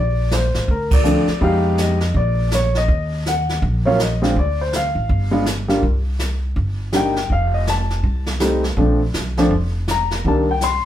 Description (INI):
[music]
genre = jazz piano trio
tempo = 163 BPM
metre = 4/4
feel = swing 63% on 8ths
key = Bb major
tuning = A4 = 439 Hz
[part]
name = warm grand piano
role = melody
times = 0.0-10.8 s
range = Eb3 to C6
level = -19 LUFS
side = left 1 dB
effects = none
[part]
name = upright bass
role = bass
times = 0.0-10.8 s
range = F1 to F2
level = -20 LUFS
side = equal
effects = none
[part]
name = jazz brush drum kit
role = drums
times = 0.3-10.8 s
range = brushed snare drum, hi-hat, kick drum, ride cymbal, snare drum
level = -23 LUFS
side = right 1 dB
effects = none
[sound]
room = moderate studio reverb, RT60 0.6 s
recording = heard from further back in the room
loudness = -16 LUFS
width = side -12 dB against mid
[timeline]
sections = 0.0-10.8 A section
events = band accent 0.9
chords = 0.0 Bbadd9; 1.4 Fm7b5; 2.1 Bb; 2.9 Ebm; 4.4 Dm; 5.1 G7(no3); 5.8 C5; 7.3 F7; 8.8 Bbmaj9; 10.2 Cm7